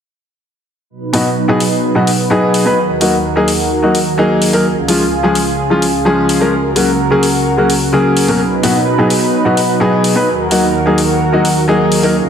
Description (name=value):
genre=EDM, festival progressive house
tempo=128 BPM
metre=4/4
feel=straight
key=unclear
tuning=A4 = 440 Hz
part: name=lush unison pad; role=sustained chords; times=0.9-12.3 s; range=C#2 to B4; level=-16 LUFS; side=right 2 dB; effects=chorus
part: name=warm grand piano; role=accompaniment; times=1.1-12.1 s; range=B2 to B4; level=-12 LUFS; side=left 1 dB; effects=digital delay
part: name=electronic hi-hat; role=drums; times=1.1-12.1 s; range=none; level=-20 LUFS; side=left 2 dB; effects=none
room=moderate lush hall reverb, RT60 2.0 s, digital ambience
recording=heavily compressed radio sound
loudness=-10 LUFS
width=side -8 dB against mid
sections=0.9-12.3 A section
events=filter sweep on analog synth pad 0.9-12.3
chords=0.9 B; 2.8 D#m; 4.7 C#; 6.5 F#/C#; 8.4 B; 10.3 D#m